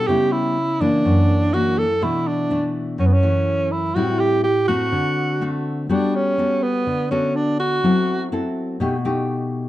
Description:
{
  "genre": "bossa nova",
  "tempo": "124 BPM",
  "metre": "4/4",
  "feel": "straight",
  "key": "unclear",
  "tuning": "A4 = 440 Hz",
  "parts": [
    { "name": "breathy alto saxophone", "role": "melody", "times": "0.0-8.3 s", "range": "B3 to A4", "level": "-20 LUFS", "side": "right 2 dB", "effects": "plate reverb" },
    { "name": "nylon-string guitar", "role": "accompaniment", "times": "0.0-9.7 s", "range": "F#2 to A4", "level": "-20 LUFS", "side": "left 1 dB", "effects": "none" }
  ],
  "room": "moderate studio reverb, RT60 0.5 s",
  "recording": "dark, warm production",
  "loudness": "-17 LUFS",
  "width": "side -14 dB against mid",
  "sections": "0.0-9.7 A section",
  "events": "none",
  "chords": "0.1 C#m7b5; 1.0 F#aug7; 2.0 Bm11; 4.0 Am7; 4.9 D7; 5.9 Gmaj9; 7.8 F#m7b5; 8.8 B7b13"
}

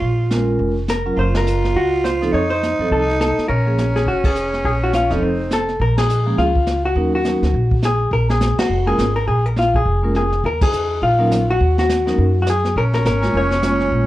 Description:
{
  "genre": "jazz, small-group swing and bop",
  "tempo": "207 BPM",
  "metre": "4/4",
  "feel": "swing 60% on 8ths",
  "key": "Bb minor",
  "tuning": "A4 = 439 Hz",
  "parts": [
    { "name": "vintage hollow-body jazz guitar", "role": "melody", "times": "0.0-14.1 s", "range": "Eb4 to Db5", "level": "-20 LUFS", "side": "left 2 dB", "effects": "none" },
    { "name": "growling tenor saxophone", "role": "second line", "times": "0.0-5.7, 12.8-14.1 s", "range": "C4 to F4", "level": "-22 LUFS", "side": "right 2 dB", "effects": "none" },
    { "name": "upright bass", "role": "bass", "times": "0.0-14.1 s", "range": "E1 to Gb2", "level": "-20 LUFS", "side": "equal", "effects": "transformer saturation" },
    { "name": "jazz brush drum kit", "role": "drums", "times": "0.0-14.1 s", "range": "brushed snare drum, hi-hat, kick drum, ride cymbal, snare drum", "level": "-24 LUFS", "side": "equal", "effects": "none" },
    { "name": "vibraphone with medium mallets", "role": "accompaniment", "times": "0.3-14.1 s", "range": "F3 to Db5", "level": "-22 LUFS", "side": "right 1 dB", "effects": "none" }
  ],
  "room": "light reverb",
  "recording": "worn, warbling old tape, cassette tape, warbly pitch drift",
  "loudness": "-15 LUFS",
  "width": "side -15 dB against mid",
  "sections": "0.0-5.8 A section; 5.8-14.1 A section",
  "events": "band accent 1.3, 4.2, 5.9, 8.6, 10.6",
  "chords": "0.0 Bbm7; 1.2 Gbmaj7; 2.3 F7; 3.5 Bbm7; 5.2 F7; 5.8 Bbm7; 7.0 Ebm7; 8.1 Bb7(no3); 10.4 Ebm; 12.8 Bbm7"
}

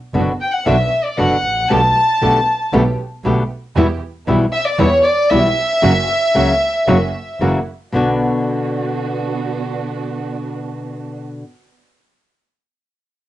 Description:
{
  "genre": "tango",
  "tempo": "116 BPM",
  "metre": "4/4",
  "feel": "rubato",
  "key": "B minor",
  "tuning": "A4 = 440 Hz",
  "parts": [
    { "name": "flamenco guitar", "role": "accompaniment", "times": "0.1-11.5 s", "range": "B2 to G4", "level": "-18 LUFS", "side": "left 2 dB", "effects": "cassette tape" },
    { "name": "warm studio string section", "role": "stabs", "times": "0.1-11.2 s", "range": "A3 to G4", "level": "-26 LUFS", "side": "right 7 dB", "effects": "cassette tape" },
    { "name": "clear double bass", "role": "bass", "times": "0.1-8.2 s", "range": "F#1 to E2", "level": "-20 LUFS", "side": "right 2 dB", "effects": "none" },
    { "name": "warm symphonic violin section", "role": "second line", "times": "0.4-7.4 s", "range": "C#5 to A5", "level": "-15 LUFS", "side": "equal", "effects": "cassette tape" }
  ],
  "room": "moderate studio reverb, RT60 0.6 s",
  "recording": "home recording on cassette, nothing above 11.0 kHz",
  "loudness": "-14 LUFS",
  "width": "side -14 dB against mid",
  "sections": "0.0-7.9 A section; 7.9-12.1 B section",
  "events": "violin section solo 0.0-7.9",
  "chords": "0.0 Bm; 1.7 Gadd9/B; 3.8 Em; 5.8 F#; 7.4 F#7; 7.9 Bm"
}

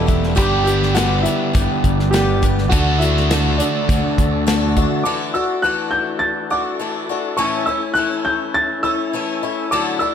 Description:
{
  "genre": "folk rock and heartland rock",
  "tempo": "103 BPM",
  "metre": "4/4",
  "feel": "straight",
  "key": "unclear",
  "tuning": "A4 = 438 Hz",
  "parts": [
    { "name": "dark grand piano", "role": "melody", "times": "0.0-10.1 s", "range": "D4 to A6", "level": "-21 LUFS", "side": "right 1 dB", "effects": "none" },
    { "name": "picked twelve-string acoustic guitar", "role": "accompaniment", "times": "0.0-10.1 s", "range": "G2 to G4", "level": "-22 LUFS", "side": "left 5 dB", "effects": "none" },
    { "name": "biting overdriven guitar", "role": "riff", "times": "0.0-5.0 s", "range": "E2 to G4", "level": "-20 LUFS", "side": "right 2 dB", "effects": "none" },
    { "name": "fingered electric bass", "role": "bass", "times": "0.0-4.8 s", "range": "E1 to D2", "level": "-19 LUFS", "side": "equal", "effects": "none" },
    { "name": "tonewheel organ", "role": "sustained chords", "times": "0.1-10.1 s", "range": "G3 to D5", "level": "-30 LUFS", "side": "right 1 dB", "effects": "slow rotary speaker" },
    { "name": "natural country drum kit", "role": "drums", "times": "0.1-4.9 s", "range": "hi-hat, kick drum, snare drum", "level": "-20 LUFS", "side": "equal", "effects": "none" }
  ],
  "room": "light reverb",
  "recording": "none",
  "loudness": "-16 LUFS",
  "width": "side -8 dB against mid",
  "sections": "0.0-5.1 A section; 5.1-10.1 B section",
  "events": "none",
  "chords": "0.4 G; 2.7 D; 5.1 Dadd9; 7.4 A"
}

